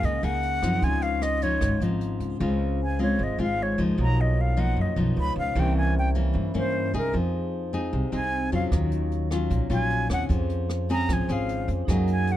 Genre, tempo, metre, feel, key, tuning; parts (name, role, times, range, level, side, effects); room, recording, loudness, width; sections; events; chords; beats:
bossa nova; 152 BPM; 4/4; straight; Db major; A4 = 440 Hz
breathy bright concert flute; melody; 0.0-12.4 s; Bb4 to Cb6; -29 LUFS; right 1 dB
nylon-string guitar; accompaniment; 0.0-12.4 s; Gb2 to Ab4; -28 LUFS; left 2 dB
vibraphone with medium mallets; accompaniment; 0.0-12.4 s; Db4 to C6; -34 LUFS; left 2 dB
upright bass; bass; 0.0-12.4 s; Ab1 to G2; -26 LUFS; right 1 dB
jazz brush drum kit; drums; 0.0-2.3, 8.7-12.4 s; hi-hat, kick drum, rim click; -30 LUFS; right 1 dB
little or no reverb; dark, warm production; -23 LUFS; side -13 dB against mid
0.0-2.4 A section; 2.4-12.4 B section
flute solo 2.4-12.4
0.0 Gb69; 0.8 Dbmaj9; 2.4 Dbmaj7; 4.0 Cbmaj9#11; 5.2 Db9; 5.6 C7b9; 7.1 Fm7; 8.7 Ebm9; 10.3 Dbmaj7/F
0.03 0.43 | 0.82 1.22 1.61 2.00 | 2.40 2.79 3.19 3.58 | 3.98 4.37 4.77 5.16 | 5.56 5.95 6.35 6.74 | 7.14 7.53 7.93 8.32 | 8.72 9.11 9.51 9.90 | 10.30 10.69 11.09 11.48 | 11.88 12.28